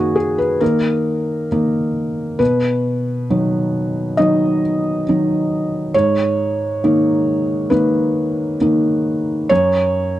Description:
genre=neoclassical minimalist piano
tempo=67 BPM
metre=4/4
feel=rubato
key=G# minor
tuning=A4 = 439 Hz
part: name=felt-muted upright piano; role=solo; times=0.0-10.2 s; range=F#2 to D#5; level=-15 LUFS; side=equal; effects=none
room=small room ambience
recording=dry, close 1970s-style studio recording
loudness=-15 LUFS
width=side -14 dB against mid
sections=0.0-10.2 A section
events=none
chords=0.0 D#m/F#; 2.4 B; 5.9 G#madd9; 9.5 N.C.

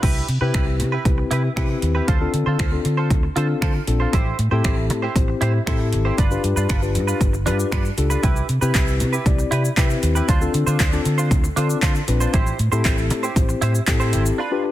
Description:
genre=dance-pop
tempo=117 BPM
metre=4/4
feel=straight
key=D dorian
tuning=A4 = 440 Hz
part: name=direct-recorded clean electric guitar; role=riff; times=0.0-14.7 s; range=D4 to C5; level=-27 LUFS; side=right 5 dB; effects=analog chorus
part: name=vintage muted fingered electric bass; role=bass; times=0.0-14.3 s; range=G1 to D3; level=-21 LUFS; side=equal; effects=sidechain pumping
part: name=pop drum kit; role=drums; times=0.0-14.4 s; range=crash cymbal, finger snaps, handclaps, hi-hat, kick drum, shaker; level=-21 LUFS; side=equal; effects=overdrive, soft clipping on snare
part: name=mellow tine electric piano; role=accompaniment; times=0.4-14.7 s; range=C4 to D5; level=-25 LUFS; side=left 5 dB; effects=sidechain pumping
room=digital ambience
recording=dense, heavily limited modern master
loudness=-17 LUFS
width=side -14 dB against mid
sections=0.0-14.7 A section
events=break 14.4-14.7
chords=0.0 Cmaj7; 2.1 Dm7; 4.1 Am7; 6.2 G7; 8.2 Cmaj7; 10.3 Dm7; 12.3 Am7

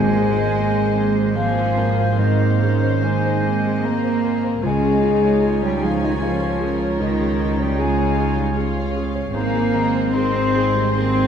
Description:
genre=cinematic, emotional film score for orchestra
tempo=75 BPM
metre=3/4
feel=rubato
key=Ab major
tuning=A4 = 440 Hz
part: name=rich studio violin section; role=melody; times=0.0-11.3 s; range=Eb5 to Ab5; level=-37 LUFS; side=left 5 dB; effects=none
part: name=mellow clarinet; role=second line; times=0.0-11.3 s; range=Eb4 to Bb4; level=-32 LUFS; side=left 2 dB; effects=none
part: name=silver concert flute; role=second line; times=0.0-11.3 s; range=Eb5 to C6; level=-27 LUFS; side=left 3 dB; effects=none
part: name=warm oboe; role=second line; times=0.0-11.3 s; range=C5 to Db5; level=-30 LUFS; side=right 1 dB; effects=none
part: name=warm studio violin section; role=second line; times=0.0-11.3 s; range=F4 to C5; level=-34 LUFS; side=left 2 dB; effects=none
part: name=felt-muted upright piano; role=accompaniment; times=0.0-11.3 s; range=Db2 to Db5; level=-27 LUFS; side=equal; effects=none
part: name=warm chamber viola section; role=accompaniment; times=0.0-11.3 s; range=Bb3 to Eb4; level=-28 LUFS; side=equal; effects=none
part: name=mellow French horn section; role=sustained chords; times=0.0-11.3 s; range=Eb3 to C4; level=-24 LUFS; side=left 5 dB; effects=none
part: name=concert harp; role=arpeggios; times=0.0-11.3 s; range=Ab2 to Db5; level=-29 LUFS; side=left 3 dB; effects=none
part: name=warm symphonic cello section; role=bass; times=0.0-11.3 s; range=Eb3 to C4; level=-24 LUFS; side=right 4 dB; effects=none
part: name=warm symphonic double bass section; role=bass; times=0.0-11.3 s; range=Ab1 to Db2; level=-23 LUFS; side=right 4 dB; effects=none
part: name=timpani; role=percussion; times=0.0-0.9 s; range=Ab2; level=-28 LUFS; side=equal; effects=none
room=wet scoring stage reverb, RT60 1.9 s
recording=minimal, uncompressed stereo recording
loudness=-17 LUFS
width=side -8 dB against mid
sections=0.0-11.3 A section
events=none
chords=0.0 Abadd9; 4.6 Db; 9.3 Abadd9

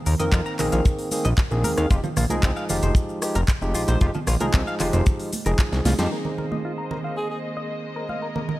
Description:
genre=nu-disco, nu disco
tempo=114 BPM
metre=4/4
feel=straight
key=unclear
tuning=A4 = 440 Hz
part: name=direct-recorded clean electric guitar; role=riff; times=0.1-8.6 s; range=F3 to Bb5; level=-33 LUFS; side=left 2 dB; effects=analog chorus, low-pass filter, analog delay
part: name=fat analog bass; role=bass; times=0.1-6.1 s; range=F1 to F2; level=-22 LUFS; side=equal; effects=tube saturation, sidechain pumping
part: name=pop drum kit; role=drums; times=0.1-6.1 s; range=handclaps, hi-hat, rim click, shaker, snare drum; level=-30 LUFS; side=equal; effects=studio reverb
part: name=congas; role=percussion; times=0.1-8.6 s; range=none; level=-31 LUFS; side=right 4 dB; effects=none
part: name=barky tine electric piano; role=accompaniment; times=0.2-8.6 s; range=Eb3 to Bb4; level=-27 LUFS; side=equal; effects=sidechain pumping, low-pass filter, analog delay
part: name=kick drum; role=drums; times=0.3-5.7 s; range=none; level=-20 LUFS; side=equal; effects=studio reverb
part: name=clear studio string section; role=sustained chords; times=6.1-8.6 s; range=Ab3 to Eb5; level=-33 LUFS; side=right 1 dB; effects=sidechain pumping, low-pass filter
part: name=growling tenor saxophone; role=melody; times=7.2-7.4 s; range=Ab4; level=-33 LUFS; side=right 1 dB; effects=analog delay
room=light reverb, small room reverb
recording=none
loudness=-20 LUFS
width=side -17 dB against mid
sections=0.0-6.1 A section; 6.1-8.6 B section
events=drum fill 5.7-6.1; band accent 6.0; filter sweep on tine electric piano 6.1-8.6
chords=0.0 Bb9sus4; 1.9 Fm9; 6.1 Bb9sus4

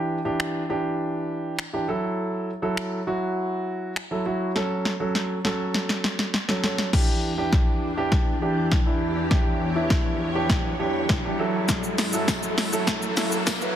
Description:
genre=dance-pop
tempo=101 BPM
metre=4/4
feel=straight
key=E dorian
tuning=A4 = 440 Hz
part: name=warm concert grand piano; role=accompaniment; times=0.0-13.8 s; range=E3 to B4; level=-26 LUFS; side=right 1 dB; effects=sidechain pumping
part: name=punchy analog drum machine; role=drums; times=0.4-13.8 s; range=crash cymbal, finger snaps, hi-hat, kick drum, shaker, snare drum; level=-24 LUFS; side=equal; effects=soft clipping on snare
part: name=string machine, violins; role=sustained chords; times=6.9-13.8 s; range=E2 to C#5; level=-29 LUFS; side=left 1 dB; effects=ensemble chorus, sidechain pumping
part: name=riser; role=sound effects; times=9.7-13.8 s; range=none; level=-33 LUFS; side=equal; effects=none
part: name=tambourine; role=percussion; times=12.3-13.6 s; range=none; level=-36 LUFS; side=left 10 dB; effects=none
room=light reverb, digital ambience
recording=dense, heavily limited modern master, high-pass filter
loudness=-22 LUFS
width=side -10 dB against mid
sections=0.0-6.9 A section; 6.9-13.8 B section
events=drum fill 4.6-6.9, 6.9-13.8; build-up 6.9-13.8; filter sweep 6.9-13.8; riser 9.7-13.8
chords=0.0 Em7; 1.9 F#m7; 4.6 A6; 6.9 Em7; 11.4 F#m7

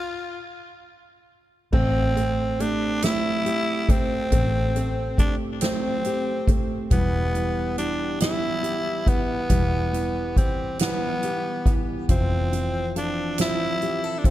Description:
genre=six-eight pop ballad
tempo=46 BPM (dotted quarters)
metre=6/8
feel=straight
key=unclear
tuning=A4 = 440 Hz
part: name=growling tenor saxophone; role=melody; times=0.0-14.3 s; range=B3 to F4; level=-27 LUFS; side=equal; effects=ping-pong delay
part: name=warm grand piano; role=accompaniment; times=1.7-14.3 s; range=E3 to A3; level=-30 LUFS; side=right 5 dB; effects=none
part: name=fingerpicked steel-string acoustic guitar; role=arpeggios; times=1.7-14.3 s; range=E3 to A4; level=-32 LUFS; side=left 5 dB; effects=none
part: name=vintage muted fingered electric bass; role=bass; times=1.7-14.3 s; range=E1 to A1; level=-26 LUFS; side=equal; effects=none
part: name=soft-mallet drum kit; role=drums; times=1.7-14.3 s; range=crash cymbal, hi-hat, kick drum, snare drum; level=-24 LUFS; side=equal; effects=none
room=studio reverb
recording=none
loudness=-21 LUFS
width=side -14 dB against mid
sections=0.0-1.7 A section; 1.7-14.3 B section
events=stop 0.0-1.7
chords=0.0 N.C.; 1.7 Am7; 6.9 Em; 12.1 Fmaj7

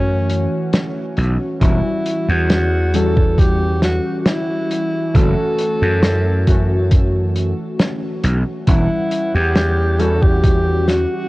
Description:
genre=vaporwave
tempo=68 BPM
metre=4/4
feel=straight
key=E dorian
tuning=A4 = 440 Hz
part: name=breathy alto saxophone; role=melody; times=0.0-11.3 s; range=C#4 to A4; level=-21 LUFS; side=equal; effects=tape echo
part: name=warbly lo-fi synth keys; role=accompaniment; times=0.0-11.3 s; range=E3 to F#5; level=-22 LUFS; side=equal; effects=lush chorus
part: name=gritty slap bass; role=bass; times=0.0-11.0 s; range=E1 to F#2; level=-17 LUFS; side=equal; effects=overdrive, tube saturation
part: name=loose indie drum kit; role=drums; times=0.3-11.1 s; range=hi-hat, snare drum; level=-20 LUFS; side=equal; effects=none
part: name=electronic kick drum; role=drums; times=1.6-10.6 s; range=none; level=-15 LUFS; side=equal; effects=none
room=studio reverb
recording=worn, warbling old tape, cassette tape, warbly pitch drift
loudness=-14 LUFS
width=side -20 dB against mid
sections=0.0-11.3 A section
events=none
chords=0.0 F#m7; 1.6 Em69; 5.1 F#m7; 8.7 Em69

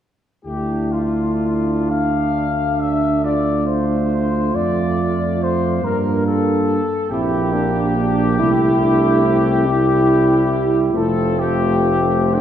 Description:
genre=classical, hymn-like piece for brass band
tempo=40-48 BPM (dotted quarters)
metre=12/8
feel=rubato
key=D minor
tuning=A4 = 440 Hz
part: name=mellow trumpet section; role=melody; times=0.4-12.4 s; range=F4 to G5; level=-21 LUFS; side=left 4 dB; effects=none
part: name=mellow flugelhorn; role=second line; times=0.5-12.4 s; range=C4 to F4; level=-23 LUFS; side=right 5 dB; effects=none
part: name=mellow euphonium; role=accompaniment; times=0.5-12.4 s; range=Bb3 to F4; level=-22 LUFS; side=right 1 dB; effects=none
part: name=warm trombone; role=accompaniment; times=0.5-12.4 s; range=G3 to Bb3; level=-24 LUFS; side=right 1 dB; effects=none
part: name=mellow tuba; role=bass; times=0.5-12.4 s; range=F1 to G2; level=-21 LUFS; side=right 1 dB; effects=none
room=wet concert hall reverb, RT60 2.0 s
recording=heard from further back in the room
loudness=-15 LUFS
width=side -10 dB against mid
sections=0.5-12.4 A section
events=none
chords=0.5 Dm; 5.8 Gm; 8.4 C; 10.9 F

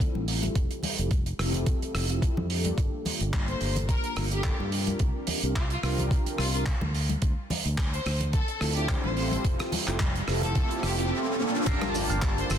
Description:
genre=nu-disco, nu disco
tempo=108 BPM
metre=4/4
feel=swing 55% on 16ths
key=G dorian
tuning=A4 = 440 Hz
part: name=mellow synth brass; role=accompaniment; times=0.0-12.5 s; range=Bb3 to A5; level=-32 LUFS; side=equal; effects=chorus, sidechain pumping
part: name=overdriven fingered electric bass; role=bass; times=0.0-12.6 s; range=F1 to G2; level=-30 LUFS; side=equal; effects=sidechain pumping
part: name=damped 70s drum kit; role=drums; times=0.0-12.6 s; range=cabasa, crash cymbal, handclaps, hi-hat, rim click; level=-33 LUFS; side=right 3 dB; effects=studio reverb
part: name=electronic kick drum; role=drums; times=0.0-12.3 s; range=none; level=-27 LUFS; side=equal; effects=studio reverb
part: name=congas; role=percussion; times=0.2-12.3 s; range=none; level=-36 LUFS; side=left 2 dB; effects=none
part: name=rich studio violin section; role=melody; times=3.5-12.6 s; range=F4 to C5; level=-36 LUFS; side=left 2 dB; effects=dub echo
part: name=riser and impact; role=sound effects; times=9.4-12.6 s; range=none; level=-35 LUFS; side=equal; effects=none
part: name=electric guitar with an envelope filter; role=riff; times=11.7-12.4 s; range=G4 to F5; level=-36 LUFS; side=right 3 dB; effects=wide subtle chorus, vintage 12-bit sampler grit
room=light reverb, small room reverb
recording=dense, heavily limited modern master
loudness=-25 LUFS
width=side -9 dB against mid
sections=0.0-11.7 A section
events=filter sweep on analog polysynth 0.0-11.7; riser 9.4-11.7; impact 11.7-12.6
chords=0.0 Dm7; 0.6 Fmaj7; 2.8 Gm9; 5.0 C9sus4; 6.9 Dm7; 9.4 Fmaj7; 11.7 Gm9

